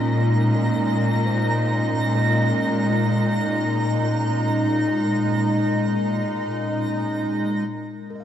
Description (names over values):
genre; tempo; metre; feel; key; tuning
ambient; free time; none; none; Bb minor; A4 = 436 Hz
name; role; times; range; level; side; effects
evolving wavetable pad; sustained chords; 0.0-8.2 s; Bb2 to Eb5; -22 LUFS; equal; chorus, built-in reverb
handpan; arpeggios; 0.0-8.2 s; Bb4 to F5; -42 LUFS; left 3 dB; none
warm chamber cello section; bass; 0.0-7.6 s; Bb2; -25 LUFS; left 1 dB; tube saturation
analog drone; drone; 0.2-8.2 s; Bb3 to Bb4; -40 LUFS; left 1 dB; none
twinkling granular texture; texture; 0.0-8.2 s; Ab5 to Bb5; -29 LUFS; right 2 dB; built-in reverb
room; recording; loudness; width
wet concert hall reverb, RT60 2.1 s; cassette tape; -19 LUFS; side -10 dB against mid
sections
0.0-7.7 A section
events
none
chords
0.0 Bbm11; 7.7 Absus2